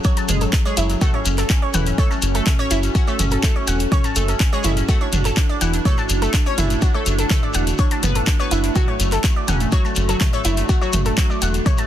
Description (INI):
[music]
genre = melodic techno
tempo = 124 BPM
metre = 4/4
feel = straight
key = unclear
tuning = A4 = 440 Hz
[part]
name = evolving wavetable pad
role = sustained chords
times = 0.0-11.9 s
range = D3 to A4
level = -28 LUFS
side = right 2 dB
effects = chorus, built-in reverb, sidechain pumping
[part]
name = analog pluck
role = arpeggios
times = 0.0-11.8 s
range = E4 to A5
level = -26 LUFS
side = equal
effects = chorus, sidechain pumping, tape echo
[part]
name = deep house drum kit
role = drums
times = 0.0-11.9 s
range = handclaps, hi-hat, toms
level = -25 LUFS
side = equal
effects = none
[part]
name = electronic kick drum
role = drums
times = 0.0-11.8 s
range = none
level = -18 LUFS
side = equal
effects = none
[part]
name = shekere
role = percussion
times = 0.0-11.9 s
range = none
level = -30 LUFS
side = left 4 dB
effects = none
[part]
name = resonant sweep polysynth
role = melody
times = 0.1-11.9 s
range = C#3 to C#5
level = -26 LUFS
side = equal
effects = chorus, sidechain pumping, ping-pong delay
[part]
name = round analog bass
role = bass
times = 0.3-11.6 s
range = E1 to F#1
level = -21 LUFS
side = equal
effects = sidechain pumping
[sound]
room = digital ambience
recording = dense, heavily limited modern master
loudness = -16 LUFS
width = side -11 dB against mid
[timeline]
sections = 0.0-11.9 A section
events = none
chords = 0.0 F#m; 4.9 D